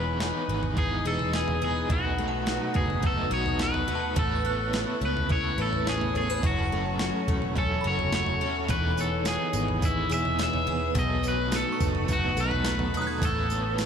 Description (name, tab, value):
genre	dream pop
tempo	106 BPM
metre	4/4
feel	straight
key	E major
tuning	A4 = 440 Hz
part	electric guitar at the edge of break-up	melody	0.0-13.9 s	E4 to E5	-30 LUFS	left 1 dB	tape echo
part	crunchy overdriven guitar	accompaniment	0.0-13.9 s	B2 to C#5	-34 LUFS	right 3 dB	tremolo, lush chorus
part	ethereal airy pad	sustained chords	0.0-13.9 s	A4 to D#6	-35 LUFS	right 1 dB	ensemble chorus, built-in reverb, phaser
part	picked twelve-string acoustic guitar	arpeggios	0.0-13.9 s	F#2 to B4	-32 LUFS	left 4 dB	wide subtle chorus, tape echo
part	vintage muted picked electric bass	bass	0.0-13.9 s	E1 to C#2	-31 LUFS	equal	none
part	synth chime	texture	0.0-13.5 s	F#5 to G#6	-40 LUFS	right 2 dB	ensemble chorus, tape echo
part	clean 12-bit digital drum machine	drums	0.2-13.9 s	kick drum, snare drum, tambourine, toms	-30 LUFS	right 1 dB	none
room	moderate lush hall reverb, RT60 2.5 s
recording	none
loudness	-24 LUFS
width	side -7 dB against mid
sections	0.0-13.9 A section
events	none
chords	0.0 Emaj7; 1.9 B7; 4.2 Aadd9; 6.4 F#m7; 8.7 Emaj7; 11.0 B7; 13.2 Aadd9